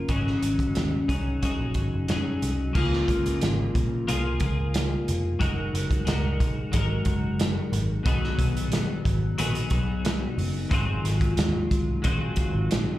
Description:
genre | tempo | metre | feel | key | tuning
indie pop, bedroom pop | 90 BPM | 4/4 | straight | Db major | A4 = 440 Hz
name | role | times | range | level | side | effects
twelve-string electric guitar | accompaniment | 0.0-13.0 s | Ab2 to Bb4 | -28 LUFS | left 2 dB | analog chorus, vibrato effect, slapback echo
vintage muted picked electric bass | bass | 0.0-12.8 s | F1 to Eb2 | -27 LUFS | equal | none
loose indie drum kit | drums | 0.1-12.9 s | crash cymbal, hi-hat, kick drum, snare drum | -28 LUFS | right 1 dB | none
room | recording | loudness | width
moderate club reverb, RT60 0.8 s | live gig heard through the venue's PA, club reverb | -23 LUFS | side -15 dB against mid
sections
0.0-2.8 A section; 2.8-13.0 B section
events
none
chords
0.1 Ab7sus4; 2.8 Db6; 5.4 Gb69; 8.1 Cb6; 10.7 Ab13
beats
| 0.09 0.76 1.42 2.09 | 2.75 3.42 4.08 4.74 | 5.41 6.07 6.74 7.40 | 8.06 8.73 9.39 10.05 | 10.72 11.38 12.05 12.71

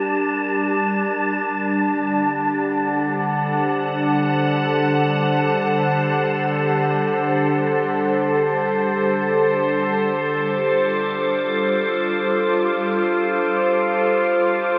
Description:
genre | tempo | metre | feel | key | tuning
ambient | free time | none | none | unclear | A4 = 441 Hz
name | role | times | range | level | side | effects
evolving wavetable pad | sustained chords | 0.0-14.8 s | D3 to F#5 | -21 LUFS | equal | chorus, built-in reverb, shimmer reverb
organ-like drone | drone | 0.0-14.8 s | G3 to G4 | -29 LUFS | equal | ensemble chorus, built-in reverb
wind-like tuned noise texture | texture | 0.0-14.8 s | A5 to D6 | -28 LUFS | equal | built-in reverb, shimmer reverb
room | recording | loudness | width
wet huge ambient reverb, RT60 7.6 s | none | -20 LUFS | mono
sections
0.0-14.8 A section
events
fade-out on synth drone 0.0-14.8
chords
0.0 Gm; 1.4 D7; 10.1 F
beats
free time

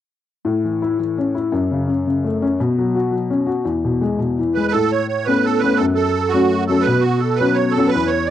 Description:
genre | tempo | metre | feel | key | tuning
celtic folk | 112 BPM (dotted quarters) | 6/8 | straight | A major | A4 = 439 Hz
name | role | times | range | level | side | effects
warm upright piano | accompaniment | 0.4-8.3 s | E2 to F#4 | -17 LUFS | left 3 dB | none
musette accordion | melody | 4.5-8.3 s | F#4 to D5 | -18 LUFS | right 8 dB | cassette tape
room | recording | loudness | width
light reverb, small room ambience | home recording on cassette | -16 LUFS | side -11 dB against mid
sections
0.5-4.7 A section; 4.7-8.3 B section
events
none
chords
0.5 A; 1.5 F#m; 2.6 Bsus2; 3.7 E; 4.7 Aadd9; 5.8 F#m; 6.9 Bsus2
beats
| 0.45 0.99 | 1.52 2.06 | 2.59 3.12 | 3.66 4.19 | 4.73 5.26 | 5.80 6.33 | 6.87 7.40 | 7.94

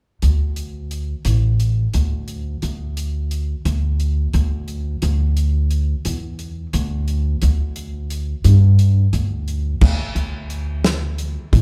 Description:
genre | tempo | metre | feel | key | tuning
progressive instrumental, band music in an uneven meter | 175 BPM (eighths) | 7/8 | straight | unclear | A4 = 440 Hz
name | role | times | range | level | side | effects
upright bass | bass | 0.2-11.6 s | A1 to G2 | -20 LUFS | equal | none
damped 70s drum kit | drums | 0.2-11.6 s | crash cymbal, hi-hat, kick drum, snare drum | -24 LUFS | equal | none
room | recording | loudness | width
moderate concert hall reverb, RT60 2.1 s | recorded in a church or concert hall | -20 LUFS | mono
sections
0.2-9.8 A section; 9.8-11.6 B section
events
none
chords
none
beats
| 0.23 0.57 0.91 1.25 1.60 1.94 2.28 | 2.62 2.97 3.31 3.65 4.00 4.34 4.68 | 5.02 5.37 5.71 6.05 6.39 6.74 7.08 | 7.42 7.76 8.11 8.45 8.79 9.13 9.48 | 9.82 10.16 10.51 10.85 11.19 11.53

